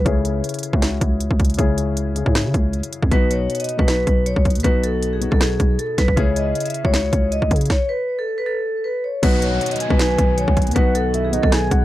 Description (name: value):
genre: hip hop, trap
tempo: 157 BPM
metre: 4/4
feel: half-time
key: unclear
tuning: A4 = 441 Hz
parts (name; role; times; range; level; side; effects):
- vibraphone with medium hard mallets; melody; 0.0, 3.1-11.8 s; G#4 to E5; -22 LUFS; equal; low-pass filter, digital delay
- dark concert grand piano; accompaniment; 0.0-11.8 s; B2 to G#4; -25 LUFS; left 5 dB; low-pass filter
- growling 808-style bass; bass; 0.0-11.8 s; B1 to C#3; -21 LUFS; equal; none
- trap drum kit; drums; 0.1-11.8 s; crash cymbal, hi-hat, kick drum, rim click, snare drum; -19 LUFS; equal; none
- soft octave-layered synth lead; second line; 9.2-11.8 s; D#5 to G#5; -26 LUFS; right 2 dB; chorus, phaser, digital delay
- dark analog pad; sustained chords; 9.7-11.8 s; D#3 to F#4; -30 LUFS; right 2 dB; none
- downlifter; sound effects; 9.2-11.8 s; none; -33 LUFS; equal; none
room: light reverb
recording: none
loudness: -16 LUFS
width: side -15 dB against mid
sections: 0.0-9.2 A section; 9.2-11.8 B section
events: break 0.1-3.1; stop 7.7-9.2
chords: 0.1 C#m; 3.1 B; 6.2 C#m; 9.2 B